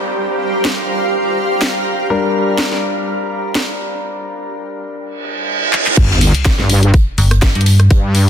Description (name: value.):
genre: bass house.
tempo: 124 BPM.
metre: 4/4.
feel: swing 55% on 16ths.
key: G minor.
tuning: A4 = 440 Hz.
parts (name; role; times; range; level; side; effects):
warm grand piano; stabs; 0.0-5.9 s; G3 to Bb4; -22 LUFS; left 3 dB; sidechain pumping, ping-pong delay.
downlifter, reverse cymbal and sub drop; sound effects; 0.0-2.1, 5.2-7.9 s; none; -20 LUFS; right 2 dB; none.
granular cloud pad; texture; 0.0-4.0 s; G4 to Bb5; -19 LUFS; right 2 dB; built-in reverb, sidechain pumping.
garage drum kit; drums; 0.6-8.3 s; crash cymbal, handclaps, hi-hat, rim click, snare drum; -19 LUFS; left 1 dB; none.
wobble bass; bass; 6.0-8.3 s; G1 to G2; -12 LUFS; equal; chorus, overdrive, sidechain pumping.
electronic kick drum; drums; 6.0-8.0 s; none; -11 LUFS; equal; none.
unplugged drum kit; drums; 6.0-8.3 s; hi-hat, snare drum; -26 LUFS; right 2 dB; sidechain pumping on hats, high-pass filter on hats, high-pass filter on snare, high-pass filter on room.
metallic FM bass; bass; 7.2-7.9 s; G1 to G2; -10 LUFS; equal; tube saturation, sidechain pumping.
room: light reverb, studio reverb.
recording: dense, heavily limited modern master.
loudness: -12 LUFS.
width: side -9 dB against mid.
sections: 0.0-6.0 A section; 6.0-8.3 B section.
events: reverse cymbal 5.2-6.0; drum fill 5.7; drop 6.0-8.3; impact 6.0-7.9.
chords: 0.0 Gm; 6.0 N.C..